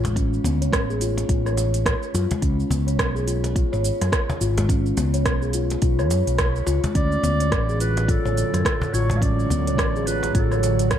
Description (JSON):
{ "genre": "organic downtempo", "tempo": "106 BPM", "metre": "4/4", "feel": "swing 59% on 16ths", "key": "C# phrygian dominant", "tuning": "A4 = 439 Hz", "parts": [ { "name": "steel tongue drum", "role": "arpeggios", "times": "0.0-10.6 s", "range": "G#3 to C#5", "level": "-25 LUFS", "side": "left 2 dB", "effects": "digital delay, shimmer reverb" }, { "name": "mellow fretless electric bass", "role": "bass", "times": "0.0-11.0 s", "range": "G#1 to F#2", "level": "-23 LUFS", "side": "equal", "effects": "none" }, { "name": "organic electronic drum kit", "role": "drums", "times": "0.0-11.0 s", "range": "cabasa, hi-hat, rim click", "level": "-28 LUFS", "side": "right 2 dB", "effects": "none" }, { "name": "cajon", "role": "percussion", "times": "0.0-10.8 s", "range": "none", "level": "-30 LUFS", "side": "left 1 dB", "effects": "none" }, { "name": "electronic kick drum", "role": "drums", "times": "0.2-11.0 s", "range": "none", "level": "-23 LUFS", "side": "equal", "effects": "none" }, { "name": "dark clarinet", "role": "melody", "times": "7.0-10.9 s", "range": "A4 to E#5", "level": "-27 LUFS", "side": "right 1 dB", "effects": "tape echo, shimmer reverb" }, { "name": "warbly tape-like pad", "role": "sustained chords", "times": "7.7-11.0 s", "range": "A2 to F#3", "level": "-29 LUFS", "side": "right 3 dB", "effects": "chorus, built-in reverb, sidechain pumping, shimmer reverb" } ], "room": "moderate digital room reverb, RT60 1.3 s", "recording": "dark, warm production", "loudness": "-19 LUFS", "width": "side -10 dB against mid", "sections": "0.0-11.0 A section", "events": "none", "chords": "0.0 N.C.; 2.4 C#5; 7.0 D", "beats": "| 0.16 0.73 1.30 1.86 | 2.43 2.99 3.56 4.13 | 4.69 5.26 5.83 6.39 | 6.96 7.52 8.09 8.65 | 9.22 9.79 10.35 10.92" }